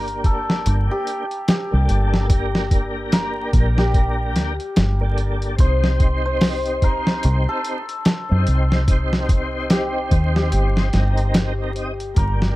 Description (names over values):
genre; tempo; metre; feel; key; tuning
trip hop; 73 BPM; 4/4; swing 59% on 16ths; unclear; A4 = 440 Hz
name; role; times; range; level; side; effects
hammered dulcimer; melody; 0.0-12.6 s; G4 to C5; -26 LUFS; left 1 dB; vintage 12-bit sampler grit, tape echo
tonewheel organ; accompaniment; 0.0-12.6 s; Bb3 to Eb5; -27 LUFS; equal; chorus vibrato, slow rotary speaker, tremolo
deep dub fingered electric bass; bass; 0.0-12.6 s; G1 to F#2; -20 LUFS; equal; none
dusty soul sampler-style drum kit; drums; 0.1-12.6 s; hi-hat, kick drum, snare drum; -18 LUFS; equal; none
room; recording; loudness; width
little or no reverb; dark, warm production, vinyl crackle; -17 LUFS; side -18 dB against mid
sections
0.0-12.6 A section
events
none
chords
0.0 Gmadd9; 5.6 Cm